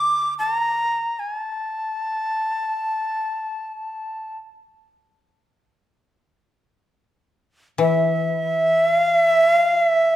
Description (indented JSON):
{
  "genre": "japanese traditional, Japanese chamber music",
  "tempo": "free time",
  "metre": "none",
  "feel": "none",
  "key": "unclear",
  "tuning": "A4 = 440 Hz",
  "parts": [
    { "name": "breathy bright shakuhachi", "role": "melody", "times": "0.0-10.2 s", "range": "E5 to D6", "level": "-19 LUFS", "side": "equal", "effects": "none" },
    { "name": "koto", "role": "accompaniment", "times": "0.0-1.0, 7.8-10.2 s", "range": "D3 to E3", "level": "-23 LUFS", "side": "left 6 dB", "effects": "none" }
  ],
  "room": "moderate recital hall reverb, RT60 1.6 s",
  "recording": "none",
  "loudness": "-18 LUFS",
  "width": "side -12 dB against mid",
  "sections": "0.0-10.2 A section",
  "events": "slowing down 7.6-10.2",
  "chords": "none",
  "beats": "free time"
}